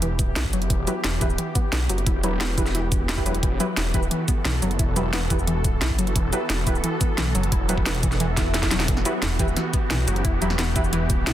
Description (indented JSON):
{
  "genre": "dark technical drum and bass",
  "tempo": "176 BPM",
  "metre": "4/4",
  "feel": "straight",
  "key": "E minor",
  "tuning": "A4 = 439 Hz",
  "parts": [
    { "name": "swarming drone", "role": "sustained chords", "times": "0.0-11.3 s", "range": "E3 to A4", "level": "-31 LUFS", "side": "equal", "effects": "built-in reverb, sidechain pumping" },
    { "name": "analog pluck", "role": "arpeggios", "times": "0.0-11.3 s", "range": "E3 to E4", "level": "-29 LUFS", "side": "left 2 dB", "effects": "chorus, sidechain pumping, dub echo" },
    { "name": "phased detuned saw bass", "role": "bass", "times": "0.0-10.2 s", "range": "E1 to B1", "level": "-25 LUFS", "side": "equal", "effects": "phaser, sidechain pumping" },
    { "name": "drum and bass drum kit", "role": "drums", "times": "0.0-11.3 s", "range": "hi-hat, shaker, snare drum", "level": "-27 LUFS", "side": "equal", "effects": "overdrive" },
    { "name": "electronic kick drum", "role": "drums", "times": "0.2-11.2 s", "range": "none", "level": "-24 LUFS", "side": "equal", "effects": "overdrive" },
    { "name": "orchestra-hit-like synth stab", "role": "stabs", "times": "0.9-10.8 s", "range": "E4 to B4", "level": "-32 LUFS", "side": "right 2 dB", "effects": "built-in reverb, dub echo" },
    { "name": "swell", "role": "sound effects", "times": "8.3-8.9 s", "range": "none", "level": "-33 LUFS", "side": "left 1 dB", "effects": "none" },
    { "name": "growling FM bass", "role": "bass", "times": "9.2-11.3 s", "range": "E1 to B1", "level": "-25 LUFS", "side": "equal", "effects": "tube saturation" }
  ],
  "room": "light reverb, digital ambience",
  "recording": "dense, heavily limited modern master",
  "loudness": "-20 LUFS",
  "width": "side -12 dB against mid",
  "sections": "0.0-11.3 A section",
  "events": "filter sweep on synth arpeggio sound 0.0-11.3; filter sweep on synth stab 0.0-11.3; swell 8.3-8.9; drum fill 8.4-8.9",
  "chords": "0.0 Em"
}